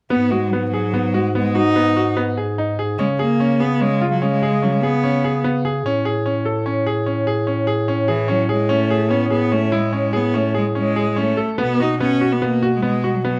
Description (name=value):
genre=contemporary instrumental, chamber music in an uneven meter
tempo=146 BPM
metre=7/4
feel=straight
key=unclear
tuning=A4 = 440 Hz
part: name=clear cello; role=melody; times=0.1-13.4 s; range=E3 to D#4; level=-23 LUFS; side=equal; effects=none
part: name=bright concert grand piano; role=arpeggios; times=0.1-13.4 s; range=B3 to A4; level=-23 LUFS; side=equal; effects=none
part: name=mellow bass clarinet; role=bass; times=0.1-13.4 s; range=G#2 to C#3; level=-24 LUFS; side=equal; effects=none
room=light reverb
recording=close, detailed microphones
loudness=-19 LUFS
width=mono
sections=0.1-13.4 A section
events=none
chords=0.1 G#m7; 3.0 C#7(no3); 5.9 Amaj7; 11.6 B5